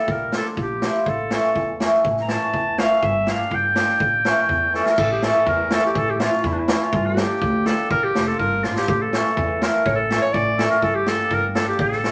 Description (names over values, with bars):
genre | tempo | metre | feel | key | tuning
klezmer | 123 BPM | 2/4 | straight | A phrygian dominant | A4 = 441 Hz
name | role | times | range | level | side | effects
bright clarinet | melody | 0.0-12.1 s | D4 to Bb5 | -24 LUFS | equal | none
cimbalom | accompaniment | 0.0-12.1 s | E3 to E4 | -25 LUFS | equal | none
upright bass | bass | 0.1-12.1 s | F1 to E2 | -31 LUFS | equal | none
street-band drum kit | drums | 0.1-12.1 s | crash cymbal, kick drum, snare drum | -27 LUFS | equal | none
room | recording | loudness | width
wet studio reverb, RT60 0.8 s | none | -20 LUFS | mono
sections
0.0-5.0 A section; 5.0-12.1 B section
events
clarinet solo 0.0-5.0; drum fill 4.7, 8.6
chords
0.1 Bb; 1.1 A; 3.0 Gm; 4.0 A; 6.9 Gm; 7.9 Bb; 8.9 A; 10.8 Gm